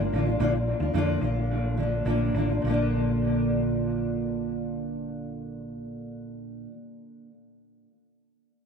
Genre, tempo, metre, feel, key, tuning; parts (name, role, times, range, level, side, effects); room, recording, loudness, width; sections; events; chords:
acoustic pop; 101-114 BPM; 4/4; straight; Bb major; A4 = 440 Hz
fingerpicked steel-string acoustic guitar; accompaniment; 0.0-6.7 s; Bb2 to F4; -27 LUFS; equal; double-tracked left and right, analog delay
hollow-body short-scale fingered electric bass; bass; 0.0-6.6 s; A1 to F2; -29 LUFS; equal
moderate plate reverb, RT60 2.8 s; echo-heavy mix; -24 LUFS; side -6 dB against mid
0.0-2.6 A section; 2.6-7.4 B section
slowing down 0.0-2.6
0.0 Bb